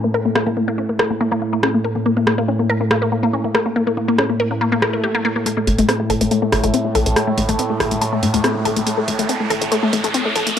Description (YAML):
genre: driving peak-time techno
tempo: 141 BPM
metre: 4/4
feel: straight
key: A minor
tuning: A4 = 440 Hz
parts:
  - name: resonant blip pluck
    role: riff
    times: 0.0-10.6 s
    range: A3 to Bb4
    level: -19 LUFS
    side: left 3 dB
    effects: phaser, tape echo
  - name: analog drone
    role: drone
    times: 0.0-10.6 s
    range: A2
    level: -22 LUFS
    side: right 2 dB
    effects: chorus
  - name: techno drum kit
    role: drums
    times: 0.4-10.6 s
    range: hi-hat, rim click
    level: -21 LUFS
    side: right 1 dB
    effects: none
  - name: swell and riser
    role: sound effects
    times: 4.8-10.6 s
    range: none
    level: -26 LUFS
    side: right 2 dB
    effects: none
  - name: tight sequencer bass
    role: bass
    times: 5.7-10.6 s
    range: A1 to A2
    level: -23 LUFS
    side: equal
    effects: none
room: light reverb, digital ambience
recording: dry, gritty hardware recording, high-pass filter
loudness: -16 LUFS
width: side -9 dB against mid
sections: 0.0-5.5 A section; 5.5-10.6 B section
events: filter sweep on synth arpeggio sound 0.0-5.5, 5.5-10.6; swell 4.8-5.5; build-up 5.5-10.6; riser 5.5-10.6; filter sweep 5.5-10.6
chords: none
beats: | 0.35 0.78 1.21 1.63 | 2.06 2.48 2.91 3.33 | 3.76 4.18 4.61 5.04 | 5.46 5.89 6.31 6.74 | 7.16 7.59 8.01 8.44 | 8.87 9.29 9.72 10.14 | 10.57